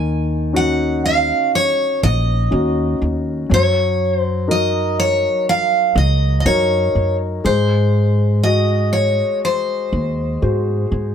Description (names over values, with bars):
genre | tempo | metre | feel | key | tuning
acoustic folk-pop ballad | 61 BPM | 4/4 | straight | unclear | A4 = 439 Hz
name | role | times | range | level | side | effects
picked steel-string acoustic guitar | melody | 0.0-10.9 s | C5 to Ab5 | -18 LUFS | equal | none
warm grand piano | accompaniment | 0.0-11.1 s | Eb3 to Eb5 | -22 LUFS | left 3 dB | none
upright bass | bass | 0.0-11.1 s | Bb1 to Ab2 | -18 LUFS | equal | none
room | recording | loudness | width
light reverb | faint mains hum | -15 LUFS | side -8 dB against mid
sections
0.0-11.1 A section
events
none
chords
0.0 Ebm7; 3.5 Gb6; 7.5 Ab7